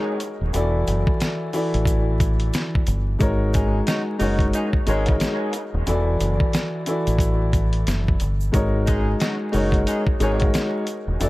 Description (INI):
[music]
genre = hip hop, boom-bap hip-hop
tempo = 90 BPM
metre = 4/4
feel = swing 60% on 16ths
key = unclear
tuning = A4 = 440 Hz
[part]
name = dark concert grand piano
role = accompaniment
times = 0.0-11.3 s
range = E3 to D5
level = -24 LUFS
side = left 1 dB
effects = cassette tape, high-pass filter, low-pass filter, dub echo
[part]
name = dusty soul sampler-style drum kit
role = drums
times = 0.2-11.3 s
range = hi-hat, kick drum, snare drum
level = -22 LUFS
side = equal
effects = none
[part]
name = egg shaker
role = percussion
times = 0.2-11.3 s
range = none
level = -42 LUFS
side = right 8 dB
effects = none
[part]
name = deep dub fingered electric bass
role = bass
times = 0.4-11.3 s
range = D#1 to A1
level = -22 LUFS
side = equal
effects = none
[part]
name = dark horn section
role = stabs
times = 3.5-10.5 s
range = F#3 to G#4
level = -31 LUFS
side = right 1 dB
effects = high-pass filter, low-pass filter, dub echo
[sound]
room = little or no reverb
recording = echo-heavy mix, vinyl crackle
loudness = -19 LUFS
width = side -19 dB against mid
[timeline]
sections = 0.0-11.3 A section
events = none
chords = 0.0 G#9sus4; 0.5 E9sus4; 3.2 G#9sus4; 5.9 E9sus4; 8.5 G#9sus4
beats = | 0.54 1.21 1.87 2.54 | 3.21 3.87 4.54 5.21 | 5.87 6.54 7.21 7.87 | 8.54 9.21 9.87 10.54 | 11.21